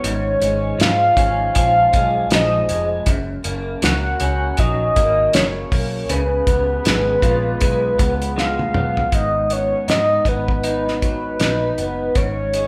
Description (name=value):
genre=indie pop, bedroom pop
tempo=79 BPM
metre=4/4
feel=swing 60% on 16ths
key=G# dorian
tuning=A4 = 440 Hz
part: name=soft octave-layered synth lead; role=melody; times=0.0-12.7 s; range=B4 to F#5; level=-21 LUFS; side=equal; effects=chorus
part: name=electric guitar through a small old amp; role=accompaniment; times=0.0-12.7 s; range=F#2 to E#4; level=-27 LUFS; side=equal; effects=vibrato effect
part: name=vintage muted fingered electric bass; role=bass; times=0.0-12.7 s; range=E#1 to G#2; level=-27 LUFS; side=equal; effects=none
part: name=cloth-damped thuddy drum kit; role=drums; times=0.0-12.7 s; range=hi-hat, kick drum, snare drum, toms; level=-22 LUFS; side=equal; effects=none
room=wet large studio reverb, RT60 0.9 s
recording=band playing live in one room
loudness=-18 LUFS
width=mono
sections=0.0-9.1 A section; 9.1-12.7 B section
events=drum fill 8.4-9.1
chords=0.0 C#/G#; 3.1 F#; 6.1 C#7; 9.1 G#m7; 12.2 C#5/G#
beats=| 0.04 0.80 1.55 2.31 | 3.07 3.82 4.58 5.34 | 6.09 6.85 7.61 8.37 | 9.12 9.88 10.64 11.40 | 12.16